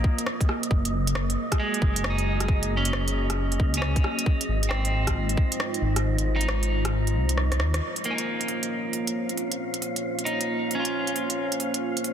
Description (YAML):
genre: future garage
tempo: 135 BPM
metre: 4/4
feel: swing 64% on 16ths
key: Bb minor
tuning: A4 = 440 Hz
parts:
  - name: electric guitar at the edge of break-up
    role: accompaniment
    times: 0.0-12.0 s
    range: Ab3 to F4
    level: -30 LUFS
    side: right 1 dB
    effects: spring reverb, sidechain pumping, digital delay
  - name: deep dark ambient pad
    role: sustained chords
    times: 0.0-12.1 s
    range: Ab3 to Db5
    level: -30 LUFS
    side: right 1 dB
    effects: chorus, built-in reverb, sidechain pumping
  - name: dark detuned saw bass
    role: bass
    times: 0.0-7.8 s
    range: Gb1 to Eb2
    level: -26 LUFS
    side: equal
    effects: sidechain pumping
  - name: electronic kick drum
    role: drums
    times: 0.0-5.5 s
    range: none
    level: -23 LUFS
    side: equal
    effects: none
  - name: wind-like tuned noise texture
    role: texture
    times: 0.0-12.1 s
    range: Eb5 to F5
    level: -36 LUFS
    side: equal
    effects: built-in reverb
  - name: organic electronic drum kit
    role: drums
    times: 0.2-12.1 s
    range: hi-hat, rim click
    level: -30 LUFS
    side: right 1 dB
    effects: overdrive, soft clipping on snare
room: light reverb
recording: dense, heavily limited modern master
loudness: -23 LUFS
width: side -9 dB against mid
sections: 0.0-7.8 A section; 7.8-12.1 B section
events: kick drops out 6.0-7.8; drum fill 7.4-7.8; band accent 7.7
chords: 0.0 Bbsus2; 0.7 Gbadd9; 4.3 Ab6; 7.8 Bbmadd9